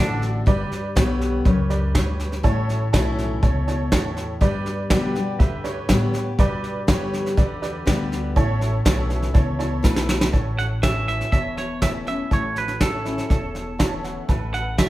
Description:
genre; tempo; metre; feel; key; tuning
honky-tonk and classic country; 122 BPM; 4/4; straight; A mixolydian; A4 = 440 Hz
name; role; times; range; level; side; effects
clean electric guitar; second line; 0.0-0.2, 10.6-14.9 s; D4 to F#5; -27 LUFS; right 3 dB; phaser, tape echo
honky-tonk upright piano; accompaniment; 0.0-14.9 s; E4 to A5; -29 LUFS; right 3 dB; none
picked steel-string acoustic guitar; accompaniment; 0.0-14.9 s; E2 to G4; -27 LUFS; left 3 dB; none
upright bass; bass; 0.0-14.9 s; E1 to B2; -26 LUFS; equal; none
soft brush drum kit; drums; 0.2-14.9 s; hi-hat, kick drum, snare drum; -21 LUFS; equal; none
room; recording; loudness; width
moderate large studio reverb, RT60 0.9 s; heard from further back in the room; -19 LUFS; side -16 dB against mid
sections
0.0-10.3 A section; 10.3-14.9 B section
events
drum fill 9.8-10.3; clean electric guitar solo 10.3-14.9; honky-tonk piano fill 13.5-14.3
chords
0.5 G; 2.4 A; 4.4 G; 8.4 A

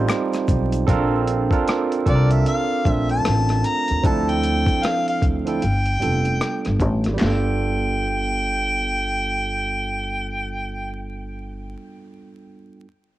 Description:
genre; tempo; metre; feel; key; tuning
R&B, neo-soul; 76 BPM; 4/4; swing 61% on 16ths; unclear; A4 = 439 Hz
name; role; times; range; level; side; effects
mellow harmonica; melody; 0.0-11.1 s; D5 to Bb5; -24 LUFS; left 1 dB; cassette tape
barky tine electric piano; accompaniment; 0.0-12.9 s; F3 to C5; -24 LUFS; right 4 dB; overdrive, cassette tape
upright bass; bass; 0.0-11.7 s; F1 to Eb2; -23 LUFS; equal; none
dusty soul sampler-style drum kit; drums; 0.1-7.4 s; handclaps, hi-hat, kick drum, rim click, snare drum; -23 LUFS; equal; overdrive, cassette tape
finger snaps and tube shaker; percussion; 0.1-0.9 s; none; -35 LUFS; left 9 dB; none
room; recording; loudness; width
light reverb; home recording on cassette, vinyl crackle; -18 LUFS; side -15 dB against mid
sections
0.0-7.2 A section; 7.2-10.3 B section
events
none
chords
0.0 F7; 0.9 Bbmaj7; 4.0 Dm7; 5.6 G7

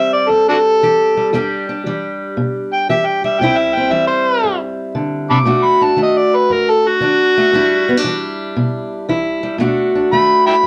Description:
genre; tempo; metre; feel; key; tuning
acoustic country blues, solo or duo; 116 BPM; 4/4; swing 68% on 8ths; E minor; A4 = 441 Hz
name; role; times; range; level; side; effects
overdriven harmonica; melody; 0.0-10.7 s; D4 to D6; -15 LUFS; equal; none
fingerpicked steel-string acoustic guitar; accompaniment; 0.0-10.7 s; E2 to G4; -19 LUFS; equal; none
room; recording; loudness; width
moderate studio reverb, RT60 0.6 s; none; -15 LUFS; mono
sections
0.0-10.7 A section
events
harmonica solo 0.0-10.7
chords
0.0 Am7; 1.3 Em7; 3.4 C; 5.5 B7#9; 7.5 Em7; 9.6 B7#9

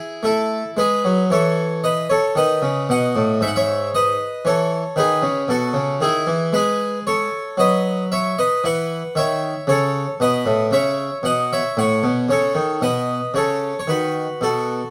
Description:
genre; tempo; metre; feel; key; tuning
classical, baroque-style suite movement for harpsichord; 57 BPM; 3/4; rubato; E major; A4 = 440 Hz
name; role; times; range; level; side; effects
harpsichord; solo; 0.0-14.9 s; G#2 to F#5; -20 LUFS; equal; none
room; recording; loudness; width
light reverb; none; -20 LUFS; mono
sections
0.0-14.9 A section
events
none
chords
0.2 A5; 2.3 B7; 3.4 E/G#; 6.5 G#m; 8.6 E5; 9.7 A; 12.8 B

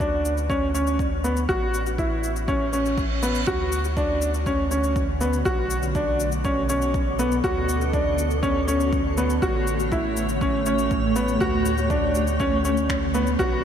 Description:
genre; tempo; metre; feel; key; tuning
piano and strings electronica; 121 BPM; 4/4; straight; D major; A4 = 441 Hz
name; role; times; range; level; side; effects
clear upright piano; riff; 0.0-13.6 s; B3 to F#4; -23 LUFS; equal; low-pass filter, ping-pong delay, shimmer reverb
warm sub bass; bass; 0.0-13.6 s; A1 to D2; -27 LUFS; equal; tube saturation, sidechain pumping
electronic kick drum; drums; 0.0-13.5 s; none; -29 LUFS; equal; overdrive
electronic shaker and finger snaps; drums; 0.0-13.5 s; none; -34 LUFS; left 5 dB; overdrive
reverse cymbal; sound effects; 2.7-3.5 s; none; -38 LUFS; right 5 dB; none
granular cloud pad; sustained chords; 4.8-13.6 s; A2 to D6; -27 LUFS; equal; built-in reverb, sidechain pumping, shimmer reverb
room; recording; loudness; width
moderate huge ambient reverb, RT60 7.6 s; dreamy mix soaked in reverb; -20 LUFS; side -8 dB against mid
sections
0.0-13.6 A section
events
reverse cymbal 2.7-3.5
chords
0.0 Dmaj7(no3); 1.5 A; 3.5 Dmaj7; 5.5 Bm7; 7.4 Dmaj7; 9.4 A7; 11.4 Dmaj7

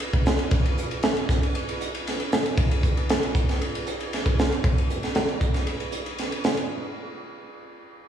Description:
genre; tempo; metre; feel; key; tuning
jazz; 116 BPM; 4/4; straight; none; none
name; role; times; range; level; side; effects
crisp fusion drum kit; drums; 0.0-6.7 s; hi-hat, kick drum, ride cymbal, snare drum; -23 LUFS; right 1 dB; none
room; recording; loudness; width
moderate lush hall reverb, RT60 2.1 s; live gig heard through the venue's PA, recital hall reverb, small room ambience; -22 LUFS; side -9 dB against mid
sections
0.0-6.7 A section; 6.7-8.1 B section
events
none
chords
none

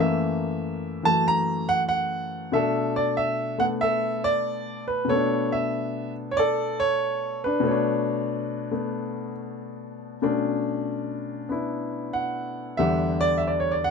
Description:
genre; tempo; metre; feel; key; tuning
solo jazz; 94 BPM; 4/4; swing 67% on 8ths; B minor; A4 = 440 Hz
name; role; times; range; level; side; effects
warm concert grand piano; solo; 0.0-13.9 s; E2 to A#5; -23 LUFS; left 1 dB; none
room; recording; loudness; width
light reverb; close, detailed microphones; -23 LUFS; side -5 dB against mid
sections
0.0-2.5 A section; 2.5-13.9 B section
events
grand piano solo 0.0-2.5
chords
0.0 F#7#9; 2.5 Bm9; 12.8 Em9

